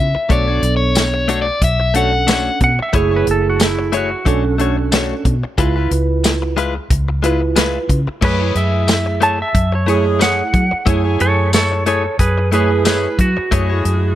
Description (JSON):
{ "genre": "straight-eighth soul blues", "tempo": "91 BPM", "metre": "4/4", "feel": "swing 56% on 16ths", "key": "F# minor", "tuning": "A4 = 440 Hz", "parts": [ { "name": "overdriven electric guitar", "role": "melody", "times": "0.0-2.6 s", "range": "C#5 to F#5", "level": "-18 LUFS", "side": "left 3 dB", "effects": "none" }, { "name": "tine electric piano", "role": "accompaniment", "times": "0.0-14.2 s", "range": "A3 to B4", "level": "-21 LUFS", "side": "right 7 dB", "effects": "lush chorus" }, { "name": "vintage muted fingered electric bass", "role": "bass", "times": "0.0-14.2 s", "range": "F#1 to F#3", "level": "-18 LUFS", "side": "equal", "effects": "none" }, { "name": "direct-recorded clean electric guitar", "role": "stabs", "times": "0.1-13.9 s", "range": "G#3 to C#5", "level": "-22 LUFS", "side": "left 6 dB", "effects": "none" }, { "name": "warm soul drum kit", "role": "drums", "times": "0.3-14.0 s", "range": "crash cymbal, hi-hat, kick drum, snare drum, tambourine", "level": "-17 LUFS", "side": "equal", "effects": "none" }, { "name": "clean lap steel guitar", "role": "second line", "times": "2.6-14.2 s", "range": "E4 to A5", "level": "-19 LUFS", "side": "right 1 dB", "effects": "analog delay" }, { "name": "clear horn section", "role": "sustained chords", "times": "8.2-14.2 s", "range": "G#3 to G#5", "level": "-27 LUFS", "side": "left 1 dB", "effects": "none" } ], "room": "studio reverb", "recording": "none", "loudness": "-13 LUFS", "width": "side -12 dB against mid", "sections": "0.0-8.2 A section; 8.2-14.2 B section", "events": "electric slide guitar solo 8.2-14.2", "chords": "0.3 Bm9; 2.9 F#m9; 4.3 Bm9; 5.6 C#7#9; 8.2 F#m9" }